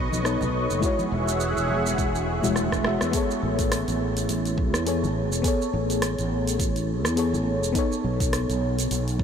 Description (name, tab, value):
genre	sunset chillout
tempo	104 BPM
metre	4/4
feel	swing 57% on 16ths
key	A lydian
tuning	A4 = 441 Hz
part	mellow FM electric piano	accompaniment	0.0-9.2 s	G#3 to E5	-26 LUFS	left 2 dB	chorus, auto-pan, analog delay
part	lush unison pad	sustained chords	0.0-3.1 s	G#4 to C#6	-30 LUFS	right 1 dB	chorus, phaser
part	sustaining fretless electric bass	bass	0.0-9.2 s	E1 to E2	-27 LUFS	equal	tube saturation, ensemble chorus
part	deep house drum kit	drums	0.1-9.2 s	hi-hat, rim click, shaker	-31 LUFS	right 1 dB	none
part	congas	percussion	0.1-2.5 s	none	-37 LUFS	left 2 dB	none
part	electronic kick drum	drums	0.8-9.2 s	none	-27 LUFS	right 1 dB	none
part	swell	sound effects	2.3-3.1 s	none	-38 LUFS	right 6 dB	none
room	moderate huge ambient reverb, RT60 7.8 s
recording	dreamy mix soaked in reverb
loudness	-22 LUFS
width	side -7 dB against mid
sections	0.0-3.1 A section; 3.1-9.2 B section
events	drum fill 2.6-3.1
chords	0.0 B9; 0.8 E69; 3.1 Amaj9; 7.8 B9